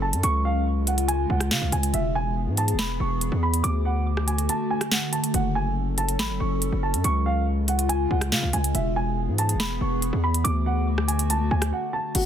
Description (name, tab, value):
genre	hip hop, drill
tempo	141 BPM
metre	4/4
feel	half-time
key	unclear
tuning	A4 = 440 Hz
part	dark concert grand piano	melody	0.0-12.3 s	F#4 to D6	-28 LUFS	right 3 dB	low-pass filter, tape echo
part	warbly tape-like pad	sustained chords	0.0-12.1 s	C#3 to A4	-29 LUFS	left 2 dB	chorus, built-in reverb, phaser
part	distorted 808-style bass	bass	0.0-12.3 s	E1 to C#3	-24 LUFS	equal	distortion
part	drill drum kit	drums	0.1-12.2 s	crash cymbal, hi-hat, rim click, snare drum	-26 LUFS	equal	none
room	little or no reverb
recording	dense, heavily limited modern master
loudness	-22 LUFS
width	side -9 dB against mid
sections	0.0-12.2 A section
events	kick muted 4.5-5.3; break 11.7-12.2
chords	0.2 C#; 1.9 E; 3.6 D; 5.3 F#m; 7.0 C#; 8.7 E; 10.4 D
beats	| 0.23 0.66 1.09 1.51 | 1.94 2.36 2.79 3.21 | 3.64 4.07 4.49 4.92 | 5.34 5.77 6.19 6.62 | 7.04 7.47 7.89 8.32 | 8.75 9.17 9.60 10.02 | 10.45 10.87 11.30 11.72 | 12.15